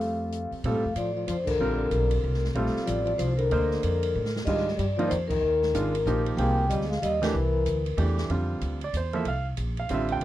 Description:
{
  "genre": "modal jazz",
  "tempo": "188 BPM",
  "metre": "3/4",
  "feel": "swing 62% on 8ths",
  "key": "unclear",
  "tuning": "A4 = 438 Hz",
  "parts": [
    { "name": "vibraphone with soft mallets", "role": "melody", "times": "0.0-7.9 s", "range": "Bb4 to G5", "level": "-28 LUFS", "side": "left 2 dB", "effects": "none" },
    { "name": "breathy trombone", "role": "second line", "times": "0.0-7.9 s", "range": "D3 to Bb3", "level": "-32 LUFS", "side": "left 2 dB", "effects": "tape echo" },
    { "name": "clear grand piano", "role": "accompaniment", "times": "0.0-10.2 s", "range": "D3 to G5", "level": "-30 LUFS", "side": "right 3 dB", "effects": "none" },
    { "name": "upright bass", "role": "bass", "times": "0.0-10.2 s", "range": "Ab1 to Bb2", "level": "-28 LUFS", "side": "equal", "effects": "none" },
    { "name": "open jazz drum kit", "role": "drums", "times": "0.0-10.2 s", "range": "crash cymbal, hi-hat, kick drum, ride cymbal, snare drum", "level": "-38 LUFS", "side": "right 2 dB", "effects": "none" }
  ],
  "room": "little or no reverb",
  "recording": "dry, close 1970s-style studio recording",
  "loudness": "-24 LUFS",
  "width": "side -14 dB against mid",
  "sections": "0.6-8.3 A section; 8.3-10.2 B section",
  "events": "band accent 1.4, 5.3, 7.2; drum fill 4.2-4.5",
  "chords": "0.0 Fadd9; 0.6 Bbmaj9; 4.5 Abmaj9; 7.3 C7; 8.3 Fmaj9"
}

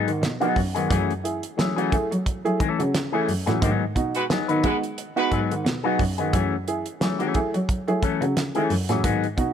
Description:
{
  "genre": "funk",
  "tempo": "88 BPM",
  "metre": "4/4",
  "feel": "swing 56% on 16ths",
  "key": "F# dorian",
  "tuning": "A4 = 441 Hz",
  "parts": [
    { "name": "electric guitar with an envelope filter", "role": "accompaniment", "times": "0.0-9.3 s", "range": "E3 to B4", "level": "-26 LUFS", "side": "left 7 dB", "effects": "none" },
    { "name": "warm cello", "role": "bass", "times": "0.0-9.5 s", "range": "F#2 to G#3", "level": "-27 LUFS", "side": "equal", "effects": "none" },
    { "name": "warm upright piano", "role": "stabs", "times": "0.1-9.5 s", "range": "G#2 to G#4", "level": "-27 LUFS", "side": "right 4 dB", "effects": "none" },
    { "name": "damped 70s drum kit", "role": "drums", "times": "0.1-9.5 s", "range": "hi-hat, kick drum, snare drum", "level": "-27 LUFS", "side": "right 1 dB", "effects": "none" },
    { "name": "clear horn section", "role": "second line", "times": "4.2-5.4 s", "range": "G#3 to B4", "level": "-28 LUFS", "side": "right 1 dB", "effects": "none" }
  ],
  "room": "light reverb",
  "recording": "none",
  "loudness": "-21 LUFS",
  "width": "side -8 dB against mid",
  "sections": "0.0-9.5 A section",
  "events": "band accent 3.6-6.3",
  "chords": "0.0 G#m7; 0.9 F#m9; 3.6 G#m7; 6.3 F#m9"
}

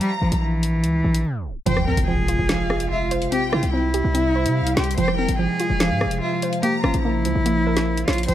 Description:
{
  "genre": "hip hop, drill",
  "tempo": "145 BPM",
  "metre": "4/4",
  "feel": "half-time",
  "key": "F harmonic minor",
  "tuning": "A4 = 436 Hz",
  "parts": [
    { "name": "clear cello", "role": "melody", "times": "0.0-8.3 s", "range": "E3 to C5", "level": "-24 LUFS", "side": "equal", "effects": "none" },
    { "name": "rich studio violin section", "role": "second line", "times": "0.0-8.3 s", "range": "E5 to Bb5", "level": "-31 LUFS", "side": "left 2 dB", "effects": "digital delay" },
    { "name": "drill drum kit", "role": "drums", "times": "0.0-8.3 s", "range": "hi-hat, rim click, snare drum", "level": "-26 LUFS", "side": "left 1 dB", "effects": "none" },
    { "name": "hard-hitting 808-style bass", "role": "bass", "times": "0.2-8.3 s", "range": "F1 to C3", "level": "-23 LUFS", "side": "equal", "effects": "none" },
    { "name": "hollow square pluck", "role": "accompaniment", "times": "1.7-8.3 s", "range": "F3 to C6", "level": "-26 LUFS", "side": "right 2 dB", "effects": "chorus" },
    { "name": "warbly tape-like pad", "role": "sustained chords", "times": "2.0-8.3 s", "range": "C3 to F4", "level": "-27 LUFS", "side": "equal", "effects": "chorus, built-in reverb" },
    { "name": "impact", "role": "sound effects", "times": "1.7-3.3 s", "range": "none", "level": "-27 LUFS", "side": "equal", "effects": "none" }
  ],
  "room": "digital ambience",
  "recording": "dark, warm production, tape stop",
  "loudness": "-18 LUFS",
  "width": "side -12 dB against mid",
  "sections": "0.0-1.7 A section; 1.7-8.3 B section",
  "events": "break 1.3-1.7; tape stop 1.3-1.7; impact 1.7-3.3",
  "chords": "0.0 N.C.; 1.7 Fm; 3.3 C; 5.0 Fm; 6.6 Bbm"
}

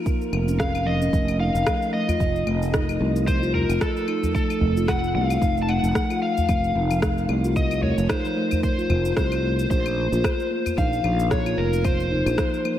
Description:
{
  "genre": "organic downtempo",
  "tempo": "112 BPM",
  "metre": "4/4",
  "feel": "swing 57% on 16ths",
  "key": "unclear",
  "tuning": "A4 = 440 Hz",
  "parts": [
    { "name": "overdriven slide guitar", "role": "melody", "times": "0.0-12.8 s", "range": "A4 to A5", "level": "-27 LUFS", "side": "left 1 dB", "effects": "ping-pong delay" },
    { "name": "steel tongue drum", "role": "arpeggios", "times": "0.1-12.8 s", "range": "F3 to F4", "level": "-25 LUFS", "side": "left 1 dB", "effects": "tape echo" },
    { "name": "electronic kick drum", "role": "drums", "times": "0.1-12.5 s", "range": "none", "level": "-25 LUFS", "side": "equal", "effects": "none" },
    { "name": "electronic shaker, claves and rim click", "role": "drums", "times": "0.1-12.8 s", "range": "none", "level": "-32 LUFS", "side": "left 1 dB", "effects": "overdrive" },
    { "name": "sustaining fretless electric bass", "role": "bass", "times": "0.3-12.4 s", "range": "F1 to C2", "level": "-24 LUFS", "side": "equal", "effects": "sidechain pumping" },
    { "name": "udu", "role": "percussion", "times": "2.1-12.2 s", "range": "none", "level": "-28 LUFS", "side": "equal", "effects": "none" }
  ],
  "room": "moderate lush hall reverb, RT60 1.7 s, digital ambience",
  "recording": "dreamy mix soaked in reverb",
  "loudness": "-20 LUFS",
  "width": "side -11 dB against mid",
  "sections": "0.0-12.8 A section",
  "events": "none",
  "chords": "0.0 Bbm; 1.1 F7; 9.7 Bbsus2"
}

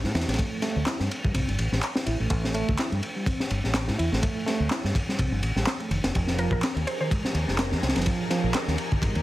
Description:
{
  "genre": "breakbeat, breaks",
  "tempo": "125 BPM",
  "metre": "4/4",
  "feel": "swing 56% on 16ths",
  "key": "unclear",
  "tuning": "A4 = 441 Hz",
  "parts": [
    { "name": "mellow reed electric piano", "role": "riff", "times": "0.0-9.2 s", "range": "Eb3 to E4", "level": "-31 LUFS", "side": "right 2 dB", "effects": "fast tremolo, low-pass filter, digital delay" },
    { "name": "fingered electric bass", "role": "bass", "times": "0.0-9.2 s", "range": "F1 to A2", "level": "-27 LUFS", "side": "equal", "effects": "none" },
    { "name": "crunchy breakbeat drum kit", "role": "drums", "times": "0.0-9.2 s", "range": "kick drum, ride cymbal, snare drum", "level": "-27 LUFS", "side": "equal", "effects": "none" },
    { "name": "electronic handclaps", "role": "drums", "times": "0.9-8.7 s", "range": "none", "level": "-31 LUFS", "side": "equal", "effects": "none" },
    { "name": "dark chamber string section", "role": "sustained chords", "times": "6.1-9.2 s", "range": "F3 to Bb4", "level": "-34 LUFS", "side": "left 1 dB", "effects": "vintage 12-bit sampler grit, sidechain pumping" },
    { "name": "mallet-like synth pluck", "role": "melody", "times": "6.4-7.1 s", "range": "Bb4 to C5", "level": "-32 LUFS", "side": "right 2 dB", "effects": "chorus, telephone sound, digital delay" }
  ],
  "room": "light reverb",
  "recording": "heavily compressed radio sound, multiband compression",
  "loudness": "-24 LUFS",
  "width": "side -16 dB against mid",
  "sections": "0.0-9.2 A section",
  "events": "filter sweep on reed electric piano 0.0-9.2",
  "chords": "0.0 A7(no3); 5.9 Fm11"
}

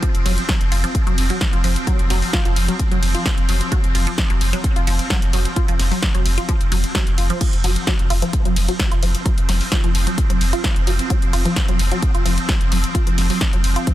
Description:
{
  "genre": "driving peak-time techno",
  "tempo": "130 BPM",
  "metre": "4/4",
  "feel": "straight",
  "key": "unclear",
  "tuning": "A4 = 440 Hz",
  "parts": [
    { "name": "resonant blip pluck", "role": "riff", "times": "0.0-13.9 s", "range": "F3 to F4", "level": "-26 LUFS", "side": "equal", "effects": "phaser, tube saturation, sidechain pumping, dub echo" },
    { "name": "swarming drone", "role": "drone", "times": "0.0-13.9 s", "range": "F3 to C4", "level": "-26 LUFS", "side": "equal", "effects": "built-in reverb, sidechain pumping" },
    { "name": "electronic kick drum", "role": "drums", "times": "0.0-13.9 s", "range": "none", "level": "-20 LUFS", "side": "equal", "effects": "none" },
    { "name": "punchy analog drum machine", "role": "drums", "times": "0.0-13.9 s", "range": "crash cymbal, hi-hat, ride cymbal, snare drum", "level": "-25 LUFS", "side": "equal", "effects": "sidechain pumping on hats, sidechain pumping on cymbals" },
    { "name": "warm sub bass", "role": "bass", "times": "0.1-13.8 s", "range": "F1", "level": "-21 LUFS", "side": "equal", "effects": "tube saturation, sidechain pumping, low-pass filter" }
  ],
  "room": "little or no reverb",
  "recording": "dense, heavily limited modern master",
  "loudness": "-16 LUFS",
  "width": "side -14 dB against mid",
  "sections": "0.0-13.9 A section",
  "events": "none",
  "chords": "0.0 F5"
}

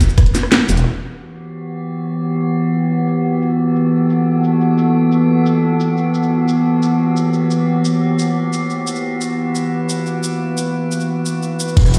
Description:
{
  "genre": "dark technical drum and bass",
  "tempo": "176 BPM",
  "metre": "4/4",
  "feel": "straight",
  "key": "E minor",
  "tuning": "A4 = 438 Hz",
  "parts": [
    { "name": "drum and bass drum kit", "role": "drums", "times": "0.0-12.0 s", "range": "crash cymbal, hi-hat, rim click, shaker, snare drum", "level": "-22 LUFS", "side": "equal", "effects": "low-pass filter on perc, low-pass filter on hats, low-pass filter on snare, low-pass filter on cymbals, low-pass filter on room" },
    { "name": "electronic kick drum", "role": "drums", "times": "0.0-0.2, 11.8 s", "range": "none", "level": "-14 LUFS", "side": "equal", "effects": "none" },
    { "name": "detuned saw bass", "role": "bass", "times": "0.7-0.8, 11.8-12.0 s", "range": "E1", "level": "-17 LUFS", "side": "equal", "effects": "chorus, tube saturation, sidechain pumping" },
    { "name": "metallic inharmonic drone", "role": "sustained chords", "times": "1.5-11.8 s", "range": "E3 to B4", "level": "-18 LUFS", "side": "equal", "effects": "chorus, built-in reverb, sidechain pumping" }
  ],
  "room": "moderate lush hall reverb, RT60 2.0 s",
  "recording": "played on a big sound system in a bare room, large studio reverb",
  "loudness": "-17 LUFS",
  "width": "mono",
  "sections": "0.9-11.8 A section",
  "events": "kick drops out 0.5-0.9; band accent 0.5; filter sweep on drum 0.9-11.8",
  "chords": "0.0 N.C.; 0.9 Em"
}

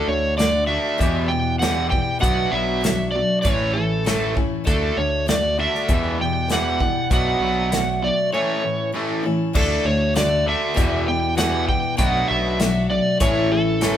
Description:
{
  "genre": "folk rock and heartland rock",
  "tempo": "98 BPM",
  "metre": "4/4",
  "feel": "straight",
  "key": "D major",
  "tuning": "A4 = 441 Hz",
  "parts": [
    { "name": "overdriven slide guitar", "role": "melody", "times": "0.0-14.0 s", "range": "A4 to G5", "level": "-22 LUFS", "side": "right 1 dB", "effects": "none" },
    { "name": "picked swing-style acoustic guitar", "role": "accompaniment", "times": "0.0-14.0 s", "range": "E2 to G4", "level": "-27 LUFS", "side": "left 3 dB", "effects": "none" },
    { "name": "crunchy overdriven guitar", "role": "riff", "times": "0.0-14.0 s", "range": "E2 to D4", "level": "-24 LUFS", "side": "equal", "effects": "none" },
    { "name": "picked electric bass", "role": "bass", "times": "0.1-14.0 s", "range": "A1 to E2", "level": "-26 LUFS", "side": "right 1 dB", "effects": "none" },
    { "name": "natural country drum kit", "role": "drums", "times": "0.4-14.0 s", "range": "crash cymbal, hi-hat, kick drum, snare drum", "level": "-23 LUFS", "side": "equal", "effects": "none" },
    { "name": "tonewheel organ", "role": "sustained chords", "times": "9.5-14.0 s", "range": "A3 to B4", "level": "-35 LUFS", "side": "right 1 dB", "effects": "none" }
  ],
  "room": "moderate large studio reverb, RT60 1.0 s",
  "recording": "band playing live in one room",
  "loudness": "-18 LUFS",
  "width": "side -10 dB against mid",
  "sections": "0.0-9.6 A section; 9.6-14.0 A section",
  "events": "break 8.3-9.6",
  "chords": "0.0 D; 1.0 Em; 2.2 Bm7; 3.4 A; 4.7 D; 5.9 Em; 7.1 Bm7; 8.3 A; 9.6 D; 10.8 Em; 12.0 Bm7; 13.2 A"
}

